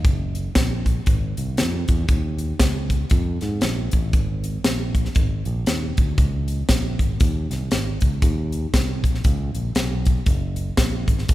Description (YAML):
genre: uptempo gospel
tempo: 118 BPM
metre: 4/4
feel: swing 59% on 8ths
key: Db major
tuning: A4 = 440 Hz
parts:
  - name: fingered electric bass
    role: bass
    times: 0.0-11.3 s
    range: Gb1 to Ab2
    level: -24 LUFS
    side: equal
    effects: none
  - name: crisp fusion drum kit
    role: drums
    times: 0.0-11.3 s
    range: hi-hat, kick drum, snare drum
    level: -20 LUFS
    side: equal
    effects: none
room: moderate church reverb, RT60 3.4 s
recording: recorded in a church or concert hall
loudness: -19 LUFS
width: side -16 dB against mid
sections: 0.0-11.3 A section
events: none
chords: none